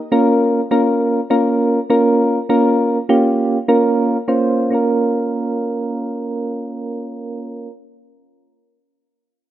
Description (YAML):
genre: pop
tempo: 101 BPM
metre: 4/4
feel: straight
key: Bb dorian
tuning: A4 = 440 Hz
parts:
  - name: soft electric-piano-like synth keys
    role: solo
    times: 0.1-7.7 s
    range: Bb3 to C5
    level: -15 LUFS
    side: right 1 dB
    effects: chorus, tremolo, low-pass filter
room: light reverb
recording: rough home demo mix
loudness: -14 LUFS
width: side -13 dB against mid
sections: 0.0-4.7 A section; 4.7-7.1 B section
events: none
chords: 0.0 Bbm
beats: 0.56 1.16 1.75 | 2.35 2.94 3.54 4.13 | 4.72 5.32 5.91 6.50